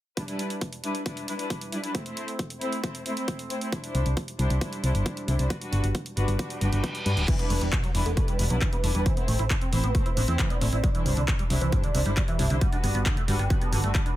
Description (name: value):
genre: uplifting trance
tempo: 135 BPM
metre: 4/4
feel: straight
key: E minor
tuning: A4 = 440 Hz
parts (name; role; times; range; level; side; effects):
- muted studio string section; sustained chords; 0.2-14.0 s; G3 to C5; -32 LUFS; left 1 dB; sidechain pumping
- electronic kick drum; drums; 0.2-14.0 s; none; -27 LUFS; equal; high-pass filter on kick, studio reverb
- punchy analog drum machine; drums; 0.2-14.1 s; crash cymbal, handclaps, hi-hat; -34 LUFS; equal; overdrive, studio reverb
- solid FM bass; bass; 3.9-13.9 s; D1 to G2; -25 LUFS; equal; tube saturation, sidechain pumping
- reverse cymbal; sound effects; 6.6-7.3 s; none; -33 LUFS; right 1 dB; none
- dense compressed supersaw; melody; 7.3-14.2 s; A4 to B5; -35 LUFS; right 2 dB; sidechain pumping, low-pass filter, tape echo
- liquid acid bass; arpeggios; 7.3-14.1 s; G2 to E4; -33 LUFS; right 3 dB; lush chorus, sidechain pumping, dub echo
room: digital ambience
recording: none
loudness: -24 LUFS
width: side -14 dB against mid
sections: 0.2-7.3 A section; 7.3-14.2 B section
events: reverse cymbal 6.6-7.3; filter sweep on acid bass 7.3-14.2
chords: 0.2 Em7; 1.9 Am; 3.7 Cadd9; 5.5 Gmaj7; 7.3 Em7; 9.1 Am; 10.8 Cadd9; 12.6 Gmaj7